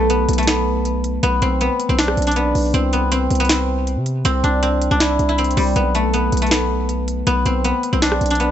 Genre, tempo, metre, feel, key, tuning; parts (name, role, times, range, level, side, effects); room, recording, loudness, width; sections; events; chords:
hip hop, trap; 159 BPM; 4/4; half-time; B phrygian; A4 = 440 Hz
guzheng; melody; 0.0-8.5 s; G3 to E5; -18 LUFS; left 1 dB
hard-hitting 808-style bass; bass; 0.0-8.5 s; B1 to C3; -20 LUFS; equal
trap drum kit; drums; 0.1-8.5 s; finger snaps, hi-hat, rim click, snare drum; -22 LUFS; equal; vintage 12-bit sampler grit
light reverb; nothing above 8.0 kHz; -16 LUFS; side -10 dB against mid
0.0-8.5 A section
0.0 Bm7; 2.7 Cadd9; 5.8 Bm7